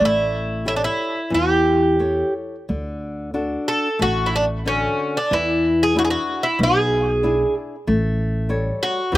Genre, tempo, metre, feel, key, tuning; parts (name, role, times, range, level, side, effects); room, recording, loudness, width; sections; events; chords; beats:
fado-style ballad; 91 BPM; 4/4; uneven beats, rubato; D major; A4 = 440 Hz
Irish bouzouki; melody; 0.0-9.2 s; C#4 to A4; -19 LUFS; right 1 dB; slapback echo
flamenco guitar; accompaniment; 0.0-9.2 s; B2 to C#5; -23 LUFS; left 2 dB; slapback echo
upright bass; bass; 0.0-9.2 s; A1 to E2; -24 LUFS; equal
little or no reverb; recorded outdoors, with no room sound; -18 LUFS; side -16 dB against mid
0.0-9.2 A section
0.0 A7; 2.7 D; 5.3 E7; 7.9 A7
| 0.00 0.66 1.31 2.00 | 2.69 3.35 4.01 4.67 | 5.32 5.96 6.60 7.24 | 7.88 8.50 9.13